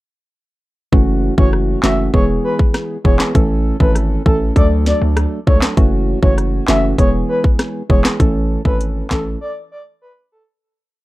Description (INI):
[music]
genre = dancehall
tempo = 99 BPM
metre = 4/4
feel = straight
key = F# minor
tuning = A4 = 440 Hz
[part]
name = percussive organ stab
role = accompaniment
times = 0.9-9.4 s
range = E3 to A4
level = -19 LUFS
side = right 1 dB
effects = chorus, sidechain pumping, plate reverb
[part]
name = hard-hitting 808-style bass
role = bass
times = 0.9-9.4 s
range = E1 to D2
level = -18 LUFS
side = equal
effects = none
[part]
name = island pop drum kit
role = drums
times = 0.9-9.2 s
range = handclaps, hi-hat, kick drum, rim click, snare drum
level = -14 LUFS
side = equal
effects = overdrive
[part]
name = breathy flute-like synth lead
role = melody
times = 1.4-10.4 s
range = A4 to E5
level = -22 LUFS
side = equal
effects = chorus, tremolo, plate reverb
[sound]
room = light reverb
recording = dark, warm production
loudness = -13 LUFS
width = side -18 dB against mid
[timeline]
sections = 0.9-10.6 verse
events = fade-out 8.2-10.6; break 9.4-10.6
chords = 0.9 F#m7; 2.1 E; 3.4 A; 4.6 D; 5.8 F#m7; 7.0 E; 8.2 A; 9.4 N.C.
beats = | 0.93 1.53 2.14 2.74 | 3.35 3.96 4.56 5.17 | 5.78 6.38 6.99 7.59 | 8.20 8.80 9.41 10.02